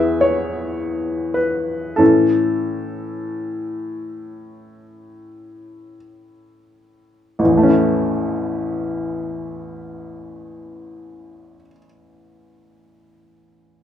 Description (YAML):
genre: classical, romantic nocturne for solo piano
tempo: free time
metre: none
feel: none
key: A major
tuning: A4 = 439 Hz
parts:
  - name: clear upright piano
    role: solo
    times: 0.0-13.8 s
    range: A1 to E5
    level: -18 LUFS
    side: left 1 dB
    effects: none
room: moderate large studio reverb, RT60 0.9 s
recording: heard from further back in the room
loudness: -17 LUFS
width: side -10 dB against mid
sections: 0.0-7.4 A section; 7.4-12.8 B section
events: slowing down 0.0-7.4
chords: 0.0 E; 2.0 A